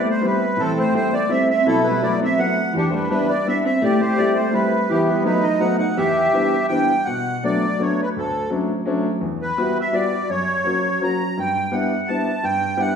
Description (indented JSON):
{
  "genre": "musette waltz",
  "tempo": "168 BPM",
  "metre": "3/4",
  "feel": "straight",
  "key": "E minor, B minor from 7.1 s",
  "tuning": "A4 = 439 Hz",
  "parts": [
    { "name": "accordion", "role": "melody", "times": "0.0-13.0 s", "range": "B3 to A#5", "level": "-20 LUFS", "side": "right 1 dB", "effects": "light tremolo tuning" },
    { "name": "vintage hollow-body jazz guitar", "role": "second line", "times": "0.0-6.7 s", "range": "E3 to D#4", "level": "-23 LUFS", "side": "right 1 dB", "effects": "none" },
    { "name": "clear upright piano", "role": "accompaniment", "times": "0.0-13.0 s", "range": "D2 to F#4", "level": "-22 LUFS", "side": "left 1 dB", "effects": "none" }
  ],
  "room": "wet recital hall reverb, RT60 1.3 s",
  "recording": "recorded in a church or concert hall",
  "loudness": "-17 LUFS",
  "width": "side -7 dB against mid",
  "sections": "0.0-7.1 A section; 7.1-13.0 B section",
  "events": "none",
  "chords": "0.0 Cmaj7; 0.6 Am7; 1.7 B7sus4; 2.7 Em7; 3.8 Am7; 4.9 Em; 5.3 B7; 6.0 Em7; 7.1 Bm7; 8.2 Dmaj7; 9.2 Emadd9; 10.3 F#; 11.4 G6",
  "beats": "0.24 | 0.59 0.95 1.30 | 1.66 2.02 2.38 | 2.75 3.11 3.47 | 3.83 4.19 4.55 | 4.91 5.26 5.62 | 5.98 6.34 6.71 | 7.07 7.44 7.80 | 8.16 8.52 8.87 | 9.23 9.58 9.93 | 10.29 10.64 11.01 | 11.37 11.73 12.09 | 12.45 12.80"
}